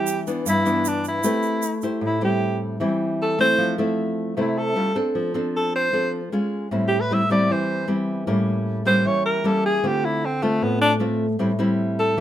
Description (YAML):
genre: bossa nova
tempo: 154 BPM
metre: 4/4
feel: straight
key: A minor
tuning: A4 = 440 Hz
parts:
  - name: breathy alto saxophone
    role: melody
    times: 0.0-12.2 s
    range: A3 to E5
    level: -21 LUFS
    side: equal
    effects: none
  - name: nylon-string guitar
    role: accompaniment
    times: 0.0-12.2 s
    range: G2 to C5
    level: -22 LUFS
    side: equal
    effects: none
  - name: egg shaker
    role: percussion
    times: 0.1-2.0 s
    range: none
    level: -31 LUFS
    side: right 7 dB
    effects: none
room: light reverb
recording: minimal, uncompressed stereo recording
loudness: -19 LUFS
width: side -12 dB against mid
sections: 0.0-2.0 A section; 2.0-12.2 B section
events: alto saxophone solo 2.0-12.2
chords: 0.5 Em7/G; 1.2 Am9; 2.0 Am7; 3.6 Fmaj7; 4.8 A7b13; 5.1 Dm7/F; 6.3 C#/G#; 6.7 Am7; 8.3 A7b9; 9.8 Dm7; 11.4 Am7